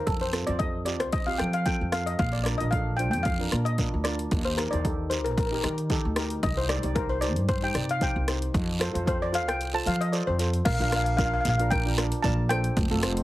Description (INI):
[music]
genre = calypso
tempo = 113 BPM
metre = 4/4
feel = swing 54% on 16ths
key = Bb major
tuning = A4 = 440 Hz
[part]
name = steel pan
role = melody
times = 0.0-13.2 s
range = A4 to A5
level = -29 LUFS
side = left 1 dB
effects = plate reverb
[part]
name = steel pan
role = accompaniment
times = 0.0-13.2 s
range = C4 to D5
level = -33 LUFS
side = equal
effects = plate reverb
[part]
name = upright bass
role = bass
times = 0.1-13.2 s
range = F1 to F3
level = -28 LUFS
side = equal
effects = none
[part]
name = punchy analog drum machine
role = drums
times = 0.1-13.2 s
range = crash cymbal, hi-hat, kick drum, rim click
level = -30 LUFS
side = equal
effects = overdrive
[part]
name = guiro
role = percussion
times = 0.1-13.1 s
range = none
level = -37 LUFS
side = right 4 dB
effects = none
[sound]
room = moderate small room reverb, RT60 0.6 s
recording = heavily compressed radio sound, multiband compression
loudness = -24 LUFS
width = side -16 dB against mid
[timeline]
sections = 0.0-10.7 A section; 10.7-13.2 B section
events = steel pan solo 0.0-10.7; kick and snare drop out 9.6-10.7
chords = 0.1 F; 2.2 Bb; 4.3 Eb; 6.4 Cm; 8.6 F; 10.7 Bb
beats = | 0.08 0.61 1.14 1.67 | 2.20 2.73 3.26 3.79 | 4.32 4.85 5.38 5.91 | 6.43 6.96 7.49 8.02 | 8.55 9.08 9.61 10.13 | 10.66 11.19 11.72 12.24 | 12.77